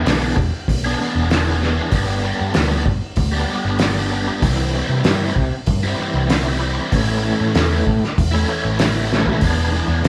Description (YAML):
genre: psychedelic rock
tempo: 96 BPM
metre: 4/4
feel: straight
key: unclear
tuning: A4 = 437 Hz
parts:
  - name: raw garage guitar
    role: riff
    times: 0.0-10.1 s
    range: A2 to G#4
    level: -23 LUFS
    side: equal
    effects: overdrive, rotary speaker
  - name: hollow-body short-scale picked electric bass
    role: bass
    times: 0.0-10.1 s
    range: E1 to C3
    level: -23 LUFS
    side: equal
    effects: none
  - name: cloth-damped thuddy drum kit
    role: drums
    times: 0.1-10.1 s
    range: hi-hat, kick drum, snare drum, toms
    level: -23 LUFS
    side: equal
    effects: none
room: moderate large studio reverb, RT60 1.1 s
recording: band playing live in one room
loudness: -18 LUFS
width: mono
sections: 0.0-10.1 A section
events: drum fill 9.1-9.4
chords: 0.0 E7; 1.9 G; 4.4 C; 6.9 A; 9.4 E7